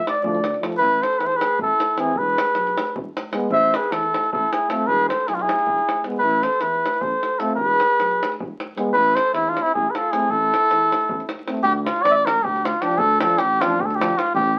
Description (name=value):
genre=balkan folk, Balkan brass band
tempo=309 BPM (eighths)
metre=7/8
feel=straight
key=A harmonic minor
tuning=A4 = 436 Hz
part: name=mellow flugelhorn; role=second line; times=0.0-11.3 s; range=C4 to D5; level=-32 LUFS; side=equal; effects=none
part: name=davul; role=percussion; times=0.1-14.5 s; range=none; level=-32 LUFS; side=equal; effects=none
part: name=clear euphonium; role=accompaniment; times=0.2-14.1 s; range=E3 to A3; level=-30 LUFS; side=equal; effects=none
part: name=warm trombone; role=accompaniment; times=0.2-14.1 s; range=A3 to D4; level=-32 LUFS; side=equal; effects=none
part: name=dark tuba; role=bass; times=0.2-14.6 s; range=E1 to E2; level=-32 LUFS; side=equal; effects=none
part: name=cornet with cup mute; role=melody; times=0.8-14.6 s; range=E4 to E5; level=-21 LUFS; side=equal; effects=none
room=moderate studio reverb, RT60 0.6 s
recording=very old 78 rpm record, vinyl crackle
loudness=-20 LUFS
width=mono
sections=0.8-11.6 A section; 11.6-14.6 B section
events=none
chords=0.0 Dm; 0.8 Am; 2.1 E; 3.5 Am; 4.9 E; 6.2 Am; 7.6 E; 8.9 Am; 11.6 Dm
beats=0.00 0.20 0.39 0.59 | 0.78 0.98 1.17 1.36 1.56 1.75 1.95 | 2.14 2.34 2.53 2.73 2.92 3.11 3.31 | 3.50 3.70 3.89 4.08 4.28 4.47 4.67 | 4.86 5.05 5.25 5.44 5.64 5.83 6.03 | 6.22 6.41 6.61 6.80 7.00 7.19 7.38 | 7.58 7.77 7.96 8.16 8.35 8.55 8.74 | 8.94 9.13 9.32 9.52 9.71 9.90 10.10 | 10.29 10.49 10.68 10.87 11.07 11.26 11.45 | 11.65 11.84 12.03 12.23 12.42 12.61 12.80 | 13.00 13.19 13.38 13.58 13.77 13.96 14.15 | 14.35 14.54